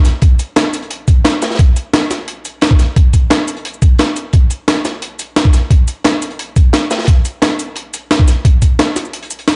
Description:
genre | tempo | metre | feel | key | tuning
drum and bass | 175 BPM | 4/4 | straight | none | none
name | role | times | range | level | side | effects
crunchy breakbeat drum kit | drums | 0.0-9.6 s | hi-hat, snare drum | -24 LUFS | equal | high-pass filter on hats, high-pass filter on snare, high-pass filter on room
breakbeat sampler-style drum kit | drums | 0.1-9.5 s | hi-hat, shaker, snare drum | -18 LUFS | equal | none
electronic kick drum | drums | 0.2-8.7 s | none | -11 LUFS | equal | none
room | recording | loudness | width
light reverb | dark, warm production, nothing above 10.5 kHz, faint mains hum | -13 LUFS | mono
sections
0.0-9.6 A section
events
break 9.1-9.6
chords
none

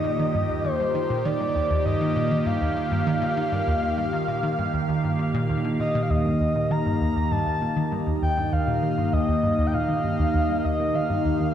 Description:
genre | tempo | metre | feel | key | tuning
ambient, sequencer-driven space music | 99 BPM | 4/4 | straight | Eb major | A4 = 438 Hz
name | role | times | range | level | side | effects
breathy flute-like synth lead | melody | 0.0-11.5 s | C5 to Bb5 | -27 LUFS | equal | chorus, tape echo
phased analog pad | sustained chords | 0.0-11.5 s | Eb3 to F5 | -25 LUFS | equal | phaser, chorus
analog pluck | riff | 0.0-11.5 s | Eb2 to Eb3 | -26 LUFS | equal | chorus, cassette tape, tape echo
room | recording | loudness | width
wet scoring stage reverb, RT60 2.0 s | dark, warm production | -21 LUFS | side -9 dB against mid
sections
0.0-11.5 A section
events
none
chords
0.0 Ebadd9

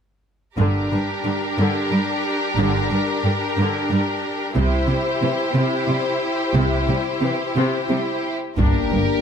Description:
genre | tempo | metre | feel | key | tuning
cinematic, epic orchestral film score | 60 BPM (dotted quarters) | 6/8 | straight | G dorian | A4 = 441 Hz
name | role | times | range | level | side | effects
clear symphonic violin section | second line | 0.6-9.2 s | G4 to C5 | -24 LUFS | left 1 dB | none
rich symphonic viola section | accompaniment | 0.6-9.0 s | C3 to E4 | -24 LUFS | left 1 dB | none
rich studio cello section | bass | 0.6-9.0 s | G2 to C3 | -23 LUFS | right 2 dB | none
rich symphonic double bass section | bass | 0.6-9.0 s | G1 to C2 | -23 LUFS | right 2 dB | none
clear symphonic violin section | melody | 8.6-9.2 s | Bb4 | -25 LUFS | left 1 dB | none
mellow French horn section | sustained chords | 8.6-9.2 s | Bb3 to D4 | -23 LUFS | left 9 dB | none
solo taiko drums | drums | 8.6-9.2 s | none | -22 LUFS | left 1 dB | none
impact | sound effects | 8.6-9.2 s | none | -28 LUFS | left 1 dB | none
room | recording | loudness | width
light reverb | close, detailed microphones | -18 LUFS | side -7 dB against mid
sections
0.6-8.6 A section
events
impact 8.6-9.2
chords
0.6 Gm; 4.6 C; 8.6 Gm

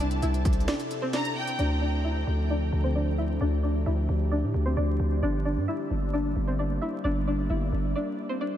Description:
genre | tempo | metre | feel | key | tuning
hip hop, trap | 132 BPM | 4/4 | half-time | D minor | A4 = 438 Hz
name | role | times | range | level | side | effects
string-like resonator pluck | melody | 0.0-8.6 s | C4 to E5 | -31 LUFS | left 1 dB | chorus, low-pass filter, ping-pong delay
warbly tape-like pad | sustained chords | 0.0-8.6 s | C3 to A4 | -34 LUFS | equal | chorus, built-in reverb, low-pass filter
growling 808-style bass | bass | 0.0-7.9 s | G1 to A2 | -26 LUFS | equal | none
techno drum kit | drums | 0.0-1.7 s | hi-hat, kick drum, snare drum | -32 LUFS | equal | overdrive
bright studio violin section | second line | 1.1-1.6 s | G5 to Bb5 | -37 LUFS | equal | ping-pong delay
room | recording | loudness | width
moderate huge ambient reverb, RT60 8.6 s | dreamy mix soaked in reverb, vinyl crackle | -25 LUFS | side -11 dB against mid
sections
0.0-1.6 A section; 1.6-8.6 B section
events
break 0.7-1.6, 8.0-8.6; filter sweep 1.6-8.6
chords
0.0 C; 1.6 Dm; 5.2 Gm

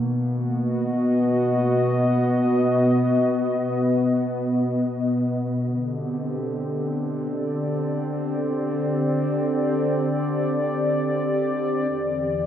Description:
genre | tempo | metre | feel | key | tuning
ambient | free time | none | none | unclear | A4 = 441 Hz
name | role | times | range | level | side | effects
warbly tape-like pad | sustained chords | 0.0-12.5 s | B2 to D#5 | -21 LUFS | equal | chorus, built-in reverb
warm sub bass | bass | 11.9-12.5 s | E2 | -42 LUFS | equal | none
room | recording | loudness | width
wet huge ambient reverb, RT60 8.7 s | none | -21 LUFS | side -10 dB against mid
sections
0.0-11.9 A section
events
none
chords
0.0 B; 5.5 D7sus4; 11.9 Em7

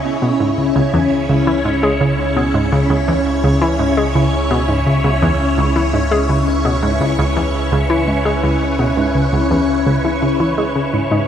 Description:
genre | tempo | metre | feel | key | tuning
ambient, sequencer-driven space music | 84 BPM | 4/4 | straight | C# minor | A4 = 441 Hz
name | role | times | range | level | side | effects
phased string machine | sustained chords | 0.0-11.3 s | C#3 to C#5 | -18 LUFS | left 1 dB | ensemble chorus, phaser
warm sub bass | bass | 0.0-11.3 s | C#2 | -22 LUFS | equal | none
wind-like tuned noise texture | texture | 0.0-11.3 s | C#4 to C#5 | -23 LUFS | equal | built-in reverb
analog pluck | riff | 0.2-11.2 s | C#2 to G#3 | -17 LUFS | equal | chorus, tape echo
room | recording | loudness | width
wet huge ambient reverb, RT60 8.6 s | none | -13 LUFS | side -9 dB against mid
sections
0.0-11.3 A section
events
none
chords
0.0 C#m

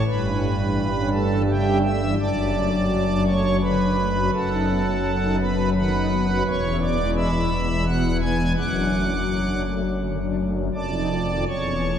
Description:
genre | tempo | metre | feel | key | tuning
classical, chorale-style piece for pipe organ | 84 BPM | 3/4 | straight | A major | A4 = 440 Hz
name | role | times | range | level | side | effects
pipe organ, strings celeste | solo | 0.0-12.0 s | E1 to G#6 | -20 LUFS | equal | none
room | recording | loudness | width
wet church reverb, RT60 3.5 s | heard from further back in the room | -20 LUFS | side -8 dB against mid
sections
0.0-12.0 A section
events
none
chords
0.1 A7/G; 2.2 D/F#; 4.3 B7/F#; 6.5 E; 8.6 D/F#; 10.7 F7; 11.5 A/E

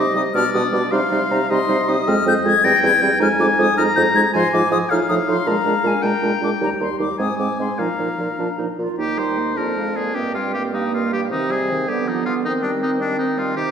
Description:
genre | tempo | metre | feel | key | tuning
quick classical-period movement for wind quintet | 105 BPM (dotted quarters) | 6/8 | rubato | C minor, Eb major from 4.3 s | A4 = 440 Hz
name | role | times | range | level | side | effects
silver concert flute | melody | 0.0-13.7 s | B4 to Bb6 | -23 LUFS | left 5 dB | none
clear oboe | second line | 0.0-13.7 s | D4 to Bb5 | -23 LUFS | left 2 dB | none
mellow French horn | accompaniment | 0.0-13.7 s | Eb3 to C4 | -25 LUFS | equal | none
warm clarinet | accompaniment | 0.0-13.7 s | Bb3 to F4 | -25 LUFS | right 6 dB | none
warm bassoon | bass | 0.0-13.7 s | Eb2 to Eb3 | -22 LUFS | right 1 dB | none
room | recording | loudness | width
wet scoring stage reverb, RT60 1.8 s | heard from further back in the room | -17 LUFS | side -7 dB against mid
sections
0.0-9.0 A section; 9.0-13.7 B section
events
none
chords
0.3 G/B; 0.9 Cm; 2.1 Fm; 2.6 C; 3.2 Fm7; 4.3 Fm/Ab; 4.9 F7/A; 5.5 Bb7; 6.6 Eb; 7.2 Ab; 7.8 Bbsus4; 8.4 Bb; 9.0 Eb; 9.6 Bb7/F; 10.2 Eb/G; 11.3 Cm; 11.9 G7/D; 12.4 Cm/Eb

